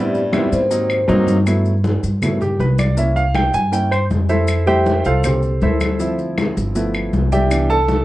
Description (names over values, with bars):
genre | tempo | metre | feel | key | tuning
Afro-Cuban jazz | 159 BPM | 4/4 | straight | G major | A4 = 440 Hz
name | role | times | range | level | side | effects
vibraphone with soft mallets | melody | 0.0-1.2 s | C5 to D5 | -20 LUFS | left 1 dB | plate reverb
warm baritone saxophone | second line | 0.0-1.2 s | Eb2 to G2 | -28 LUFS | right 1 dB | none
warm grand piano | accompaniment | 0.0-8.0 s | E3 to A5 | -18 LUFS | right 1 dB | none
upright bass | bass | 0.0-8.0 s | G1 to A2 | -19 LUFS | equal | none
congas | percussion | 0.1-8.0 s | none | -24 LUFS | left 2 dB | none
maracas | percussion | 0.1-8.0 s | none | -38 LUFS | left 7 dB | none
claves | percussion | 0.3-7.7 s | none | -27 LUFS | left 2 dB | none
room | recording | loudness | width
light reverb | worn, warbling old tape, cassette tape, warbly pitch drift | -15 LUFS | side -16 dB against mid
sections
0.0-1.5 A section; 1.5-8.0 B section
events
grand piano solo 1.5-8.0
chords
0.0 Am7; 0.7 Ab9; 1.5 Gmaj13; 3.0 C7b9; 4.5 Fmaj9; 6.0 Dm9; 6.8 G13; 7.5 Cmaj9